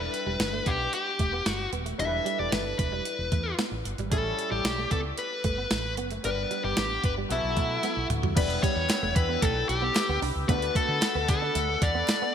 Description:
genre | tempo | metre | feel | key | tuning
1980s-style pop | 113 BPM | 4/4 | straight | E dorian | A4 = 440 Hz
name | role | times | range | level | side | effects
dark smooth lead guitar | melody | 0.0-12.3 s | E4 to E5 | -28 LUFS | left 2 dB | overdrive, ping-pong delay
clear grand piano | accompaniment | 0.0-12.3 s | F#3 to B4 | -35 LUFS | left 3 dB | lush chorus
woody fretless electric bass | bass | 0.0-12.0 s | D#1 to D3 | -33 LUFS | equal | none
direct-recorded clean electric guitar | riff | 0.1-12.3 s | E3 to D4 | -37 LUFS | right 8 dB | ensemble chorus
clean 12-bit digital drum machine | drums | 0.1-12.2 s | crash cymbal, hi-hat, kick drum, snare drum, tambourine, toms | -28 LUFS | right 1 dB | none
chorused pulse-width pad | sustained chords | 8.4-12.3 s | A4 to E6 | -36 LUFS | equal | none
group handclap | percussion | 8.9-12.2 s | none | -44 LUFS | right 3 dB | none
room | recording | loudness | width
moderate lush hall reverb, RT60 2.3 s | bright 1980s-style digital production | -25 LUFS | side -8 dB against mid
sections
0.0-8.4 A section; 8.4-12.3 B section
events
drum fill 7.8-8.4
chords
0.0 Em7; 4.1 A7; 6.2 G; 7.3 B7sus4; 8.4 Em7; 10.5 Bm7/D

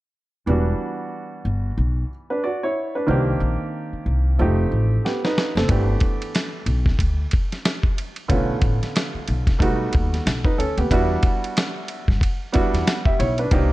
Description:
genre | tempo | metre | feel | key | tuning
hip hop, jazz-hop | 92 BPM | 4/4 | swing 59% on 16ths | unclear | A4 = 437 Hz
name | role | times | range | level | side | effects
warm upright piano | accompaniment | 0.5-13.7 s | D3 to E5 | -24 LUFS | right 2 dB | none
upright bass | bass | 0.5-13.7 s | E1 to G2 | -21 LUFS | equal | none
dusty soul sampler-style drum kit | drums | 5.1-13.7 s | hi-hat, kick drum, ride cymbal, snare drum | -21 LUFS | equal | none
room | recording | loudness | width
small room reverb | dark, warm production | -19 LUFS | side -18 dB against mid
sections
0.5-10.9 A section; 10.9-13.7 B section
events
drum fill 5.0-5.7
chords
0.5 Em9; 3.1 Cm7; 4.4 F9; 5.7 G69; 8.3 Bm7b5; 9.6 B7b13; 10.9 Em9

